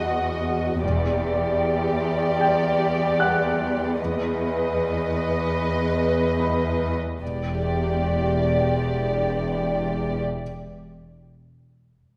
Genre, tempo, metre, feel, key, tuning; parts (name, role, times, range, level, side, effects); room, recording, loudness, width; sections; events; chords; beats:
cinematic, suspense film score; 76 BPM; 4/4; straight; E minor; A4 = 440 Hz
muted symphonic violin section; second line; 0.0-10.2 s; F#4 to D#5; -27 LUFS; equal
muted chamber cello section; bass; 0.0-10.2 s; E2; -28 LUFS; equal
clear grand piano; texture; 0.0-7.2 s; F#5 to F#6; -32 LUFS; equal
muted chamber double bass section; bass; 0.8-1.6, 7.2-10.2 s; E1; -30 LUFS; equal
wet scoring stage reverb, RT60 1.7 s; -23 LUFS; mono
0.0-7.2 A section; 7.2-10.4 B section
0.0 Esus2
0.04 | 0.82 1.62 2.40 3.19 | 3.99 4.78 5.58 6.39 | 7.21 8.01 8.81 9.61